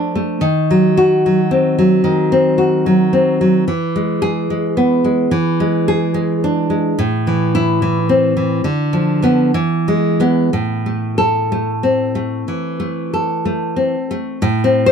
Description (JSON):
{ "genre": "romantic piece for solo classical guitar", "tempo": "60-75 BPM", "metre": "4/4", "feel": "rubato", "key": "unclear", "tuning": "A4 = 444 Hz", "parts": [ { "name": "nylon-string guitar", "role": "solo", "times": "0.0-14.9 s", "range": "A2 to C5", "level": "-13 LUFS", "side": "equal", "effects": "none" } ], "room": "moderate booth ambience, RT60 0.2 s", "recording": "dry, close 1970s-style studio recording", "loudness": "-13 LUFS", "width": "side -7 dB against mid", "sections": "0.0-14.4 A section", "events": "none", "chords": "0.4 D#m6; 3.7 E; 5.3 E7; 7.0 Am; 8.6 Bdim/D; 9.5 E; 10.5 Am" }